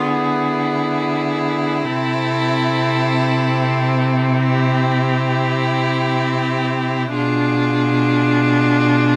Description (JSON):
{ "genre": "classical, slow romantic movement for string quartet", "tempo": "free time", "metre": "none", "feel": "none", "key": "A minor, C major from 4.4 s", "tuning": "A4 = 441 Hz", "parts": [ { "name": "rich violin", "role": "melody", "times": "0.0-9.2 s", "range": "G4 to A4", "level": "-28 LUFS", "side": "equal", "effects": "none" }, { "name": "clear violin", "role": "second line", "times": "0.0-9.2 s", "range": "E4 to F4", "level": "-25 LUFS", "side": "equal", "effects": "none" }, { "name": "clear viola", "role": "accompaniment", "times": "0.0-9.2 s", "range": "B3 to D4", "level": "-22 LUFS", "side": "equal", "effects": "none" }, { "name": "clear cello", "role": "bass", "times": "0.0-9.2 s", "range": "B2 to D3", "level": "-22 LUFS", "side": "equal", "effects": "none" } ], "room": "moderate studio reverb, RT60 0.8 s", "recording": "none", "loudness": "-18 LUFS", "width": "mono", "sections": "0.0-9.2 A section", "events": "none", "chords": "0.0 E7/D; 1.9 Am/C; 7.2 Bdim7", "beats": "free time" }